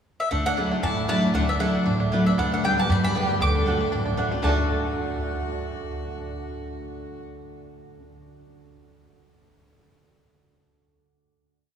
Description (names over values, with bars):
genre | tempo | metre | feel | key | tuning
bluegrass | 233 BPM | 4/4 | swing 55% on 8ths | D major | A4 = 437 Hz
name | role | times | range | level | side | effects
mandolin | melody | 0.2-8.0 s | E5 to D6 | -29 LUFS | left 1 dB | none
clear fiddle | second line | 0.3-7.3 s | B3 to A4 | -34 LUFS | left 1 dB | none
picked steel-string acoustic guitar | accompaniment | 0.3-8.0 s | A2 to G4 | -27 LUFS | equal | none
bluegrass banjo | arpeggios | 0.3-8.0 s | G3 to A4 | -32 LUFS | right 1 dB | none
upright bass | bass | 0.3-7.9 s | A1 to G2 | -28 LUFS | equal | none
mandolin | stabs | 0.6-8.0 s | A3 to G5 | -32 LUFS | right 3 dB | none
room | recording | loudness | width
wet cathedral reverb, RT60 5.4 s | recorded in a church or concert hall, small room ambience | -22 LUFS | side -8 dB against mid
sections
0.0-0.3 pickup bar; 0.3-4.4 A section; 4.4-6.5 final chord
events
none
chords
0.3 Dadd9; 2.4 G/D; 3.4 D